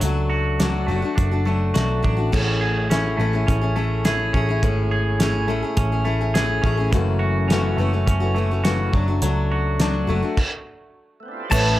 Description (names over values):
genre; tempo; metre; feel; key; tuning
folk rock and heartland rock; 104 BPM; 4/4; straight; A major; A4 = 440 Hz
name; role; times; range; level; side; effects
picked steel-string acoustic guitar; accompaniment; 0.0-11.8 s; F#2 to B4; -24 LUFS; left 4 dB; none
twangy electric guitar; riff; 0.0-11.8 s; F#2 to G#4; -26 LUFS; right 3 dB; none
hollow-body short-scale picked electric bass; bass; 0.0-11.8 s; F#1 to C#2; -22 LUFS; equal; none
cloth-damped thuddy drum kit; drums; 0.0-11.7 s; crash cymbal, hi-hat, kick drum, snare drum; -22 LUFS; equal; none
overdriven tonewheel organ; sustained chords; 11.2-11.8 s; A3 to D5; -33 LUFS; right 3 dB; slow rotary speaker
pedal steel guitar; melody; 11.5-11.8 s; A5; -21 LUFS; left 1 dB; none
barky reed electric piano; accompaniment; 11.5-11.8 s; A4 to C#5; -30 LUFS; right 6 dB; overdrive, fast tremolo
tube shaker; percussion; 11.5-11.7 s; none; -35 LUFS; right 9 dB; none
room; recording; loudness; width
small room ambience; none; -18 LUFS; side -15 dB against mid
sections
0.0-2.3 A section; 2.3-11.5 A section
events
stop 10.4-11.5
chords
0.0 D; 2.3 Amaj7; 6.9 F#m7; 8.9 D/F#